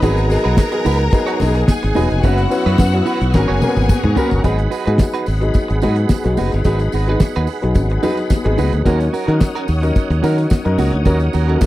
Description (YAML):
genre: disco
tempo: 109 BPM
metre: 4/4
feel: straight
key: G# minor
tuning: A4 = 443 Hz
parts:
  - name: clear studio string section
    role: second line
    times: 0.0-4.4 s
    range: F#4 to A#5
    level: -24 LUFS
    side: left 1 dB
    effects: none
  - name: clean electric guitar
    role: accompaniment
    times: 0.0-11.7 s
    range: C#4 to C#5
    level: -24 LUFS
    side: right 7 dB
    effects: harmonic tremolo
  - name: warm baby grand piano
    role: accompaniment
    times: 0.0-11.7 s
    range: F#3 to B4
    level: -21 LUFS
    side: left 2 dB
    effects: none
  - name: bright tonewheel organ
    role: sustained chords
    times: 0.0-11.7 s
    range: B3 to E6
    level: -26 LUFS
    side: right 1 dB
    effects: chorus vibrato, slow rotary speaker
  - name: modern bright fingered electric bass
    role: bass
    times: 0.0-11.6 s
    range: E1 to D#3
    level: -16 LUFS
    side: equal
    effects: none
  - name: damped 70s drum kit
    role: drums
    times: 0.0-11.7 s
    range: hi-hat, kick drum, snare drum, toms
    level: -15 LUFS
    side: equal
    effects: none
  - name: congas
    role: percussion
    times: 0.0-11.7 s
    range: none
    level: -26 LUFS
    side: left 4 dB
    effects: none
  - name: tambourine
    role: percussion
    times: 0.0-11.7 s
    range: none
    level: -39 LUFS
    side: right 10 dB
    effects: none
room: studio reverb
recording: dry, close 1970s-style studio recording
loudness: -14 LUFS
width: side -16 dB against mid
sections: 0.0-4.4 A section; 4.4-11.7 B section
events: drum fill 3.3-4.4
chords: 0.0 G#m7; 2.2 F#7sus4; 3.3 G#m11; 4.4 G#m7; 8.9 D#m7